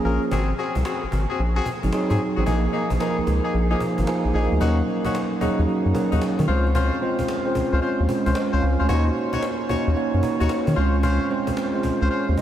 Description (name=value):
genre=R&B, new jack swing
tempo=112 BPM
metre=4/4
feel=swing 65% on 16ths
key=Eb dorian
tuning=A4 = 441 Hz
part: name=mellow tine electric piano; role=accompaniment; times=0.0-12.4 s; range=F3 to C6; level=-23 LUFS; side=right 2 dB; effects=lush chorus
part: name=warm horn section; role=stabs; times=0.0-12.3 s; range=Bb3 to Db5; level=-27 LUFS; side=left 3 dB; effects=tape echo
part: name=round analog bass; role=bass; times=0.0-12.4 s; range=Ab1 to Eb3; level=-21 LUFS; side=equal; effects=none
part: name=cajon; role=drums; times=0.2-12.4 s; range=none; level=-33 LUFS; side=equal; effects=none
room=moderate huge ambient reverb, RT60 8.9 s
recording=dreamy mix soaked in reverb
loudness=-20 LUFS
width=side -11 dB against mid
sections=0.0-4.6 A section; 4.6-12.4 B section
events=tine electric piano fill 3.5-4.6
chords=0.3 Ab7; 2.5 Bb7sus4; 4.6 Ebm7; 6.5 Dbmaj7; 8.9 Ebm7; 10.8 Dbmaj7